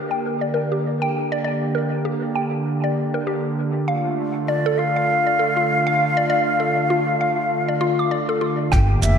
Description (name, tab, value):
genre	organic downtempo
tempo	99 BPM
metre	4/4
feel	swing 58% on 16ths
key	unclear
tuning	A4 = 441 Hz
part	warm analog pad	sustained chords	0.0-9.2 s	D3 to G4	-23 LUFS	right 1 dB	chorus, sidechain pumping
part	mallet-like synth pluck	arpeggios	0.0-8.9 s	F4 to D6	-24 LUFS	equal	chorus, phaser, vintage 12-bit sampler grit, diffuse ambient delay
part	breathy reedy ney	melody	4.5-9.2 s	D5 to G5	-20 LUFS	left 1 dB	ping-pong delay
part	upright bass	bass	8.7-9.2 s	F1 to G1	-16 LUFS	equal	sidechain pumping
part	electronic hi-hat and shaker	drums	8.7-9.2 s	none	-28 LUFS	right 7 dB	overdrive, low-pass filter on hats, low-pass filter on perc, low-pass filter on snare
part	electronic kick drum	drums	8.7-8.9 s	none	-20 LUFS	equal	overdrive
room	wet lush hall reverb, RT60 2.0 s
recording	dreamy mix soaked in reverb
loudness	-18 LUFS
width	side -7 dB against mid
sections	0.0-8.7 A section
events	none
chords	0.0 Gm; 3.9 Dm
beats	0.24 0.84 | 1.45 2.06 2.66 3.27 | 3.87 4.48 5.09 5.69 | 6.30 6.91 7.51 8.12 | 8.72